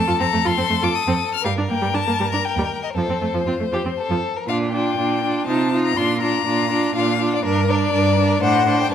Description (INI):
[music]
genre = quick classical-period movement for string quartet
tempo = 121 BPM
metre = 3/4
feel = straight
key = Bb major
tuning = A4 = 441 Hz
[part]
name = rich violin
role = melody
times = 0.0-8.9 s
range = Bb4 to F6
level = -22 LUFS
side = left 8 dB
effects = none
[part]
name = clear violin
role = second line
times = 0.0-8.9 s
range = F4 to C5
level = -25 LUFS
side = left 3 dB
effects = none
[part]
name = clear viola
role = accompaniment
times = 0.1-8.9 s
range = F3 to F4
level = -23 LUFS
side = right 2 dB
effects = none
[part]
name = rich cello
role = bass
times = 0.1-8.9 s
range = Eb2 to C3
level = -23 LUFS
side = right 4 dB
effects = none
[sound]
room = moderate scoring stage reverb, RT60 1.4 s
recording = close, detailed microphones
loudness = -17 LUFS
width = side -9 dB against mid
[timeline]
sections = 0.0-4.5 A section; 4.5-8.9 B section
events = none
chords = 0.0 F; 1.4 Gm; 2.4 Eb; 3.0 F; 4.5 Bb; 5.5 F7/C; 6.0 Bb; 7.4 Gm; 8.4 D7/A